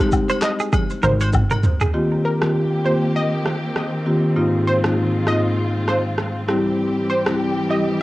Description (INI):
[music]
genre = afrobeats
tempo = 99 BPM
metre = 4/4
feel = swing 58% on 16ths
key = unclear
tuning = A4 = 440 Hz
[part]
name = marimba with medium mallets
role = accompaniment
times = 0.0-7.9 s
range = Ab2 to G4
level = -20 LUFS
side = left 1 dB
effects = none
[part]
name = agogo bells and woodblock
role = percussion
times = 0.0-1.6 s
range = none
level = -29 LUFS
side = left 6 dB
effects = none
[part]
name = deep house drum kit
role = drums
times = 0.1-7.4 s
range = handclaps, kick drum, rim click, shaker, toms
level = -21 LUFS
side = equal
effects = cassette tape
[part]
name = direct-recorded clean electric guitar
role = riff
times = 0.3-1.9 s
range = Ab4 to C5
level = -25 LUFS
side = right 3 dB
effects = lush chorus, tape echo
[part]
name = analog pluck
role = melody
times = 0.4-7.8 s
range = Bb4 to Eb5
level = -25 LUFS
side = right 1 dB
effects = chorus, tape echo
[part]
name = fat analog bass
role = bass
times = 1.0-1.4 s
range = Ab1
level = -18 LUFS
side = equal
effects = none
[part]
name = warm symphonic string section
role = sustained chords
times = 1.9-8.0 s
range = Eb3 to G4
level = -26 LUFS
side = equal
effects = none
[sound]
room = light reverb, digital ambience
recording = home recording on cassette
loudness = -17 LUFS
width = side -17 dB against mid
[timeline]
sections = 0.0-1.9 A section; 1.9-8.0 B section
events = drum fill 0.7-1.9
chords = 0.0 Fm (rootless); 1.9 Eb6; 4.4 Ab6; 6.5 C